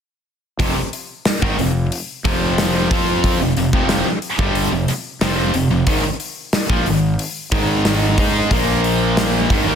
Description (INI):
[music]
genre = hard rock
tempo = 91 BPM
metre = 4/4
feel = straight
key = F dorian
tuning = A4 = 440 Hz
[part]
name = cranked stack guitar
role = riff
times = 0.6-9.8 s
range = F2 to Ab4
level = -23 LUFS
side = left 10 dB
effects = overdrive
[part]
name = crunchy overdriven guitar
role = riff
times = 0.6-9.8 s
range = F2 to Ab4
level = -22 LUFS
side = right 9 dB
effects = none
[part]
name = heavy high-gain guitar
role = riff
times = 0.6-9.8 s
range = F2 to Ab4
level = -23 LUFS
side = equal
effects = distortion
[part]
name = fuzz fingered electric bass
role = bass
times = 0.6-9.8 s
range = F1 to Ab2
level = -23 LUFS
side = equal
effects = overdrive
[part]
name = gated 80s drum kit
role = drums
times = 0.6-9.7 s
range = hi-hat, kick drum, snare drum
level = -20 LUFS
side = equal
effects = none
[sound]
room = light reverb, studio reverb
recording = dense, heavily limited modern master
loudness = -16 LUFS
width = side -8 dB against mid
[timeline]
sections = 0.6-9.8 A section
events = none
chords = 0.6 F5; 5.9 Ab5; 8.5 Bb5